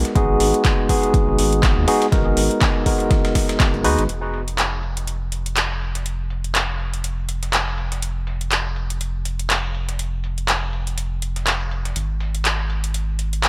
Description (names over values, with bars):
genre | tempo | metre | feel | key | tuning
deep house | 122 BPM | 4/4 | swing 57% on 16ths | unclear | A4 = 440 Hz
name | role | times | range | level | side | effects
barky tine electric piano | stabs | 0.0-4.0 s | Ab3 to Cb5 | -22 LUFS | equal | overdrive, sidechain pumping, analog delay
rubbery square bass | bass | 0.0-13.5 s | F1 to Eb2 | -26 LUFS | equal | sidechain pumping
breakbeat sampler-style drum kit | drums | 0.1-13.5 s | hi-hat, snare drum | -37 LUFS | equal | sidechain pumping on hats, high-pass filter on hats, low-pass filter on hats, studio reverb, high-pass filter on snare, low-pass filter on snare, high-pass filter on room, low-pass filter on room, analog delay
deep house drum kit | drums | 0.1-13.5 s | handclaps, hi-hat | -25 LUFS | equal | overdrive, studio reverb
electronic kick drum | drums | 0.2-3.7 s | none | -21 LUFS | equal | overdrive, studio reverb
room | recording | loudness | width
light reverb | echo-heavy mix | -21 LUFS | mono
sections
0.0-4.1 A section; 4.1-13.5 B section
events
none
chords
0.0 Abm7; 4.1 N.C.